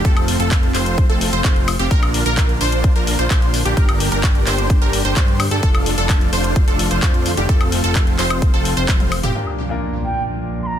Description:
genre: EDM, festival progressive house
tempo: 129 BPM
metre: 4/4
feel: straight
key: Bb major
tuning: A4 = 440 Hz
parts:
  - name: lush unison pad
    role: sustained chords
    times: 0.0-10.8 s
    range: Bb2 to Bb4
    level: -26 LUFS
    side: equal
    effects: chorus, sidechain pumping
  - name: wide unison pluck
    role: arpeggios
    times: 0.0-9.3 s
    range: G4 to C5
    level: -24 LUFS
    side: right 1 dB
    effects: phaser, sidechain pumping, digital delay
  - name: dense compressed supersaw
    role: riff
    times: 0.0-9.3 s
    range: C4 to C5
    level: -23 LUFS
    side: equal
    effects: sidechain pumping, digital delay
  - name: fat analog bass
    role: bass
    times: 0.0-9.3 s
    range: F1 to G2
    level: -22 LUFS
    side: equal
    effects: sidechain pumping
  - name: electronic kick drum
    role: drums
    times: 0.0-9.0 s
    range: none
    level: -15 LUFS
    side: equal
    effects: none
  - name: house drum kit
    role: drums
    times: 0.1-9.6 s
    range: handclaps, hi-hat, toms, woodblock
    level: -23 LUFS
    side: left 2 dB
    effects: low-pass filter on hats, low-pass filter on cymbals, low-pass filter on perc, low-pass filter on snare, low-pass filter on toms, low-pass filter on room
  - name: clear grand piano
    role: accompaniment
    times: 9.3-10.8 s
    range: Bb2 to Bb4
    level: -27 LUFS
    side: left 4 dB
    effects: sidechain pumping, digital delay
  - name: impact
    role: sound effects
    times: 9.3-10.8 s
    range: none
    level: -26 LUFS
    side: equal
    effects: none
  - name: mellow wooden flute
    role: melody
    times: 10.0-10.8 s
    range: G5 to C6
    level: -23 LUFS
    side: right 4 dB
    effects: digital delay
room: little or no reverb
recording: dense, heavily limited modern master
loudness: -14 LUFS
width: side -10 dB against mid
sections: 0.0-9.4 A section; 9.4-10.8 B section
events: drop 0.0-9.4; drum fill 8.9-9.4; impact 9.4-10.8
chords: 0.0 F; 1.9 Bb; 3.8 Gm; 5.6 Dm/F; 7.5 F; 9.4 Bb

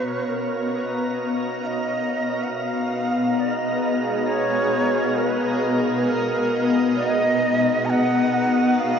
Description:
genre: ambient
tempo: 68 BPM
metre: 3/4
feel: straight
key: B lydian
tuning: A4 = 440 Hz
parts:
  - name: breathy shakuhachi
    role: melody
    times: 0.0-9.0 s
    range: A#4 to A#5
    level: -24 LUFS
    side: right 2 dB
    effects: shimmer reverb, diffuse ambient delay
  - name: granular cloud pad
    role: sustained chords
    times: 0.0-9.0 s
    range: B3 to A#5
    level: -22 LUFS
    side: left 1 dB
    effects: built-in reverb, shimmer reverb
  - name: organ-like drone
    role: drone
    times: 0.0-9.0 s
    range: B3 to F#4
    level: -30 LUFS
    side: left 2 dB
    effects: ensemble chorus, built-in reverb
  - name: wind-like tuned noise texture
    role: texture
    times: 0.0-9.0 s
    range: D#5 to E#6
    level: -34 LUFS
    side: right 1 dB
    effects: built-in reverb, shimmer reverb
room: wet cathedral reverb, RT60 5.7 s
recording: dark, warm production, nothing above 7.5 kHz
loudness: -19 LUFS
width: side -7 dB against mid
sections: 0.0-9.0 A section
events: fade-in on ambient pad 0.0-9.0; fade-in on synth drone 0.0-9.0; fade-in on synth texture 0.0-9.0; fade-in on shakuhachi 0.0-9.0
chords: 0.0 Bmaj9

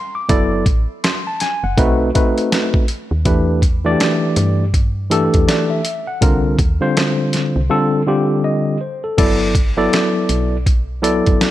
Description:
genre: hip hop, jazz-hop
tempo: 81 BPM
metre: 4/4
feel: swing 61% on 16ths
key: G major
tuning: A4 = 440 Hz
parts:
  - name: tine electric piano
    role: accompaniment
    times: 0.0-11.5 s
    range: D3 to D6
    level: -17 LUFS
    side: left 1 dB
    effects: medium stereo tremolo
  - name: woody FM bass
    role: bass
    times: 0.3-11.4 s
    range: F#1 to G2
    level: -20 LUFS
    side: equal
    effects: none
  - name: boom bap sampler-style drum kit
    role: drums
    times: 0.3-11.5 s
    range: crash cymbal, hi-hat, kick drum, snare drum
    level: -16 LUFS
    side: equal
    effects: none
room: light reverb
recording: none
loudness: -14 LUFS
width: side -14 dB against mid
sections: 0.0-9.2 A section; 9.2-11.5 A section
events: silent gap 7.7-9.2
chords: 0.3 F#m11; 1.8 B7b9; 3.3 Em7; 6.2 Cm7; 7.7 Fadd9; 9.2 Gmaj7

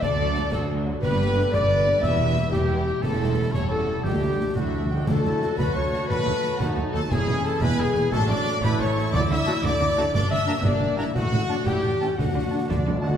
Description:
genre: cinematic, heroic adventure film score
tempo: 119 BPM (dotted quarters)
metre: 6/8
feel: straight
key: D major from 5.1 s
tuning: A4 = 436 Hz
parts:
  - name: warm symphonic violin section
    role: melody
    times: 0.0-13.2 s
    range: F#4 to E6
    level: -36 LUFS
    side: left 3 dB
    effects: none
  - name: clear oboe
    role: second line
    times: 0.0-13.1 s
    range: F#4 to Bb5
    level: -36 LUFS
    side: equal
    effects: none
  - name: mellow large flute ensemble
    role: second line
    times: 0.0-13.2 s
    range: F#4 to E6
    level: -35 LUFS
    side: left 2 dB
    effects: none
  - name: rich symphonic violin section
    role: second line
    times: 0.0-13.2 s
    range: D4 to E6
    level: -37 LUFS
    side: left 3 dB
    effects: none
  - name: warm studio viola section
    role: accompaniment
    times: 0.0-12.9 s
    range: E3 to G4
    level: -33 LUFS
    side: equal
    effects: none
  - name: mellow French horn section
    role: sustained chords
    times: 0.0-13.2 s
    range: D4 to E5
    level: -28 LUFS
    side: left 3 dB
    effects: none
  - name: concert harp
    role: arpeggios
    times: 0.0-13.2 s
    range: G2 to B5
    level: -34 LUFS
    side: left 7 dB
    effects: none
  - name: warm trumpet section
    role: stabs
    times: 0.0-13.2 s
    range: D4 to E5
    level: -31 LUFS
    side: right 1 dB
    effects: none
  - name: warm symphonic cello section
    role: bass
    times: 0.0-13.1 s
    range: D2 to D3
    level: -30 LUFS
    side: right 2 dB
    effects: none
  - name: warm symphonic double bass section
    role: bass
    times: 0.0-13.1 s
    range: E1 to D#2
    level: -28 LUFS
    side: right 3 dB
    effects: none
  - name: concert snare drum, concert bass drum and clash cymbals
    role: drums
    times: 0.0-12.9 s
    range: none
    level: -30 LUFS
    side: equal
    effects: none
  - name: dark trombone section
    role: sustained chords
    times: 0.3-13.1 s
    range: B2 to D4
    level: -36 LUFS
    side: right 3 dB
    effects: none
  - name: timpani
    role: percussion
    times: 4.0-5.6, 8.1-13.2 s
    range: A2 to D3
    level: -30 LUFS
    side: equal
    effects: none
  - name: clear clarinet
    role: second line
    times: 5.1-13.1 s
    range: C#4 to F#4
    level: -36 LUFS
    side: left 2 dB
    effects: none
room: wet scoring stage reverb, RT60 1.5 s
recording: none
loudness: -21 LUFS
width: side -8 dB against mid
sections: 0.0-5.1 A section; 5.1-13.2 B section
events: timpani fill 4.6-5.1, 12.2-13.2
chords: 0.0 D; 1.0 G; 2.0 Em; 3.0 A7/E; 4.1 Dsus4; 4.6 D; 6.1 B7/D#; 7.1 E; 8.1 D/A; 8.6 A; 9.1 D; 10.1 Gm; 11.1 D/A; 11.7 A; 12.2 D

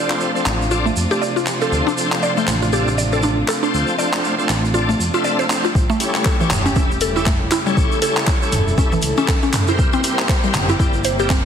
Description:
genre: afro house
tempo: 119 BPM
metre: 4/4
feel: swing 58% on 16ths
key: D minor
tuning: A4 = 440 Hz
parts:
  - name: warm studio string section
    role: sustained chords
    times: 0.0-11.4 s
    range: C3 to A4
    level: -24 LUFS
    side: right 1 dB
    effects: sidechain pumping
  - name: mallet-like synth pluck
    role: arpeggios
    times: 0.0-11.4 s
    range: E3 to D5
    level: -22 LUFS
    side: equal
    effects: chorus, sidechain pumping, tape echo
  - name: bright tonewheel organ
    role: stabs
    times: 0.0-11.3 s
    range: C4 to E5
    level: -23 LUFS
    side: left 1 dB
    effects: overdrive, chorus vibrato, slow rotary speaker, sidechain pumping, tape echo
  - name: deep house drum kit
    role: drums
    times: 0.1-11.4 s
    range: handclaps, hi-hat, toms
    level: -23 LUFS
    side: equal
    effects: overdrive
  - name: tube shaker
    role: percussion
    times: 0.1-11.4 s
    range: none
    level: -30 LUFS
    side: right 4 dB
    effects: none
  - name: smooth synth bass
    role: bass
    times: 0.5-11.4 s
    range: E1 to F2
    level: -23 LUFS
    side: equal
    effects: sidechain pumping
  - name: electronic kick drum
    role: drums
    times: 5.8-11.4 s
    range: none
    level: -18 LUFS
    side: equal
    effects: overdrive
room: wet recital hall reverb, RT60 1.4 s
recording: heavily compressed radio sound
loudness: -15 LUFS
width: side -8 dB against mid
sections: 0.0-11.4 A section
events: build-up 0.0-11.4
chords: 0.0 Dm7; 5.8 A7; 9.8 C7

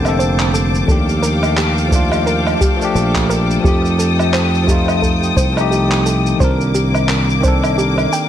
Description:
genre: sunset chillout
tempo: 87 BPM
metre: 4/4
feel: swing 58% on 16ths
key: unclear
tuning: A4 = 441 Hz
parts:
  - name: bell-like tine electric piano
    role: accompaniment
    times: 0.0-8.3 s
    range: D3 to Bb4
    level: -18 LUFS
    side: equal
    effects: auto-pan, ping-pong delay
  - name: rich symphonic string section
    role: sustained chords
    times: 0.0-8.3 s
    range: Bb3 to Eb6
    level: -22 LUFS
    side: left 5 dB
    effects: none
  - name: soft round pluck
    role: arpeggios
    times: 0.0-8.3 s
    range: G4 to G5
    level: -23 LUFS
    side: right 1 dB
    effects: chorus, ping-pong delay
  - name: sustaining fretless electric bass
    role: bass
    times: 0.0-8.1 s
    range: F1 to F2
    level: -17 LUFS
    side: equal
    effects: none
  - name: electronic woodblock, shaker and handclaps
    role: drums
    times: 0.1-8.3 s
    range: none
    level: -22 LUFS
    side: right 1 dB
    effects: none
  - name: electronic kick drum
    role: drums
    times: 0.9-7.6 s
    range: none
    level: -17 LUFS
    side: equal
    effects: none
room: light reverb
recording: none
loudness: -12 LUFS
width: side -10 dB against mid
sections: 0.0-8.3 A section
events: filter sweep on synth pluck 0.0-8.3; kick drops out 7.8-8.3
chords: 0.0 Bbmaj9; 0.9 Ebmaj9#11; 3.6 F9; 6.4 Cm9

